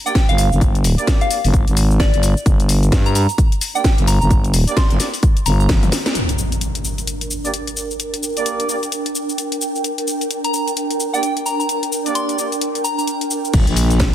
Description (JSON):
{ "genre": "bass house", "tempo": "130 BPM", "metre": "4/4", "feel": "swing 60% on 16ths", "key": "G minor", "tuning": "A4 = 439 Hz", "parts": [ { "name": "soft synth bell", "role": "melody", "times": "0.1-5.7, 10.4-13.0 s", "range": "D5 to C6", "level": "-24 LUFS", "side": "equal", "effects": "chorus, phaser, dub echo" }, { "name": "clear horn section", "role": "stabs", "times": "0.1-12.5 s", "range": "Bb3 to D5", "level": "-26 LUFS", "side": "right 4 dB", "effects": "sidechain pumping, low-pass filter, dub echo" }, { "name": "house drum kit", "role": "drums", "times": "0.1-14.1 s", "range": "crash cymbal, hi-hat, shaker, snare drum, toms", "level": "-23 LUFS", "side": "left 2 dB", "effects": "none" }, { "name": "electronic kick drum", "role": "drums", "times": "0.2-5.8, 13.5-14.1 s", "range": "none", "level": "-15 LUFS", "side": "equal", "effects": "none" }, { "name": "growling FM bass", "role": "bass", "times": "0.3-5.9, 13.5-14.1 s", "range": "G1 to G2", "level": "-15 LUFS", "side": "equal", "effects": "overdrive, sidechain pumping" }, { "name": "ethereal airy pad", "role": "texture", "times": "6.8-14.1 s", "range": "D4 to G5", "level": "-23 LUFS", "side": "right 2 dB", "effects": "ensemble chorus, built-in reverb, sidechain pumping" }, { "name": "impact", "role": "sound effects", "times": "6.2-8.0, 13.5-14.1 s", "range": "none", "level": "-24 LUFS", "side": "equal", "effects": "none" } ], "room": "light reverb, digital ambience", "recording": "dense, heavily limited modern master", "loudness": "-15 LUFS", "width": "side -11 dB against mid", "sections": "0.0-6.2 A section; 6.2-13.5 B section", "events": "drum fill 5.7-6.2; band accent 6.0; impact 6.2-8.0, 13.5-14.1", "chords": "0.0 Gm" }